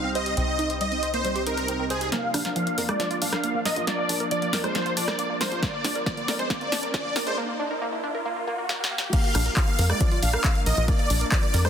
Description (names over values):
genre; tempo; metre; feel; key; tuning
uplifting trance; 137 BPM; 4/4; straight; unclear; A4 = 440 Hz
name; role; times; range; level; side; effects
supersaw chords; melody; 0.0-11.7 s; Ab4 to F5; -28 LUFS; right 1 dB; analog chorus, sidechain pumping, low-pass filter, ping-pong delay
lush unison pad; sustained chords; 0.0-11.7 s; C3 to Eb4; -34 LUFS; equal; chorus, sidechain pumping
wide unison pluck; arpeggios; 0.0-11.7 s; F3 to C5; -31 LUFS; right 2 dB; sidechain pumping, ping-pong delay
tight sequencer bass; bass; 0.0-11.7 s; Bb1 to F2; -28 LUFS; equal; tube saturation, sidechain pumping, high-pass filter
punchy analog drum machine; drums; 0.2-11.7 s; crash cymbal, handclaps, hi-hat, rim click, snare drum; -29 LUFS; equal; none
riser; sound effects; 5.4-9.1 s; none; -36 LUFS; left 1 dB; none
electronic kick drum; drums; 5.6-11.4 s; none; -24 LUFS; equal; none
room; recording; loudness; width
light reverb; dense, heavily limited modern master, high-pass filter; -22 LUFS; side -8 dB against mid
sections
0.0-2.1 A section; 2.1-9.1 B section; 9.1-11.7 C section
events
build-up 2.1-9.1; drum fill 2.1-7.4, 8.7-9.1; filter sweep on supersaw synth 2.1-9.1; riser 5.4-9.1; drop 9.1-11.7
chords
0.0 Cm7; 2.1 Bb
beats
| 0.37 0.81 1.25 1.68 | 2.12 2.56 3.00 3.44 | 3.87 4.31 4.75 5.19 | 5.63 6.06 6.50 6.94 | 7.38 7.82 8.25 8.69 | 9.13 9.57 10.01 10.44 | 10.88 11.32